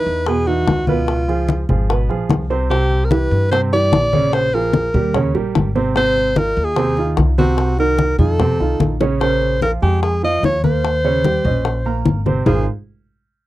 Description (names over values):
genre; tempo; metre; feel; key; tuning
Afro-Cuban jazz; 148 BPM; 4/4; straight; Ab major; A4 = 435 Hz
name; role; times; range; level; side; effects
clear alto saxophone; melody; 0.0-12.7 s; F4 to Eb5; -19 LUFS; equal; none
warm upright piano; accompaniment; 0.0-12.7 s; B2 to Bb5; -21 LUFS; right 5 dB; none
upright bass; bass; 0.1-12.6 s; Ab1 to G2; -20 LUFS; equal; none
bongos; percussion; 0.1-12.6 s; none; -23 LUFS; left 6 dB; none
congas; percussion; 0.3-12.6 s; none; -20 LUFS; left 2 dB; none
room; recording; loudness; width
little or no reverb; dry, close 1970s-style studio recording; -14 LUFS; side -16 dB against mid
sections
0.0-9.2 A section; 9.2-12.5 B section; 12.5-13.5 C section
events
drum fill 8.8-9.2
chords
0.0 Esus2; 1.1 Db7; 2.7 Cmaj9; 4.3 Bbm7; 5.1 Eb7; 6.0 Ab6; 7.6 Cm7b5; 8.4 F7; 9.2 Bbm7; 10.8 Eb6; 12.5 Ab69